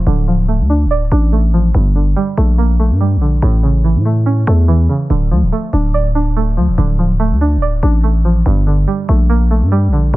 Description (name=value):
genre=hip hop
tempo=143 BPM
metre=4/4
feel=half-time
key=D harmonic minor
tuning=A4 = 440 Hz
part: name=string-like resonator pluck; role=accompaniment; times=0.0-10.2 s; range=G2 to D5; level=-17 LUFS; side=right 2 dB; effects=chorus, low-pass filter
part: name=growling 808-style bass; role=bass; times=0.0-10.2 s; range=D1 to A2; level=-12 LUFS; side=equal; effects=none
room=studio ambience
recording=none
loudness=-11 LUFS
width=side -18 dB against mid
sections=0.0-10.2 A section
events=filter sweep on synth pluck 0.0-10.2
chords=0.0 Dm; 1.7 Gmadd9; 3.4 A; 5.1 Dm; 8.5 Gmadd9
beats=| 0.07 0.49 0.91 1.33 | 1.75 2.17 2.58 3.00 | 3.42 3.84 4.26 4.68 | 5.10 5.52 5.94 6.36 | 6.78 7.20 7.62 8.04 | 8.46 8.88 9.30 9.72 | 10.14